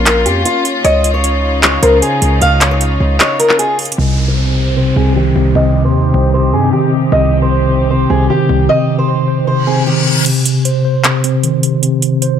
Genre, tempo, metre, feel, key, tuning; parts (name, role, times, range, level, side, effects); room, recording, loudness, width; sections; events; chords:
hip hop, trap; 153 BPM; 4/4; half-time; C phrygian; A4 = 441 Hz
fingerpicked acoustic archtop guitar; melody; 0.0-10.0 s; F4 to F5; -16 LUFS; equal; low-pass filter, tape echo
warm studio string section; sustained chords; 0.0-10.2 s; C3 to G4; -20 LUFS; left 1 dB; low-pass filter
hard-hitting 808-style bass; bass; 0.0-8.7 s; Bb1 to G2; -15 LUFS; equal
trap drum kit; drums; 0.1-4.0, 10.3-12.3 s; crash cymbal, handclaps, hi-hat; -14 LUFS; right 1 dB; overdrive
mallet-like synth pluck; second line; 0.8-3.9 s; C5 to Eb5; -23 LUFS; left 4 dB; chorus, tape echo
mellow tine electric piano; accompaniment; 4.0-12.4 s; C3 to C5; -13 LUFS; equal; medium stereo tremolo, low-pass filter
downlifter and reverse cymbal; sound effects; 4.0-7.1, 9.6-10.3 s; -22 LUFS; left 2 dB
light reverb; -10 LUFS; side -8 dB against mid
0.0-4.0 A section; 4.0-10.3 B section; 10.3-12.4 C section
kick muted 3.2-4.0, 10.3-12.4; filter sweep 4.0-10.3; reverse cymbal 9.6-10.3
0.0 Bbm; 0.8 Dbadd9; 4.0 Cm